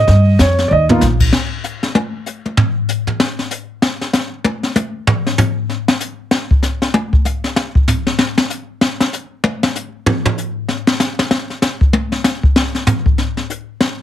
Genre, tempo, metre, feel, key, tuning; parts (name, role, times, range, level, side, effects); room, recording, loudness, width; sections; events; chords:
jazz piano trio; 192 BPM; 4/4; swing 61% on 8ths; A4 = 440 Hz
warm grand piano; melody; 0.0-1.0 s; A#3 to Eb5; -14 LUFS; right 2 dB
upright bass; bass; 0.0-1.3 s; A#1 to G2; -12 LUFS; equal
jazz brush drum kit; drums; 0.1-13.9 s; brushed snare drum, crash cymbal, hi-hat, kick drum, snare drum, toms; -14 LUFS; left 1 dB
light reverb; heavily compressed radio sound; -14 LUFS; side -11 dB against mid
0.0-1.3 A section; 1.3-11.3 A section; 11.3-14.0 A section
grand piano solo 0.0-1.3; drum fill 0.7-1.0; drum solo 1.3-14.0
0.1 Gm7b13; 1.3 N.C.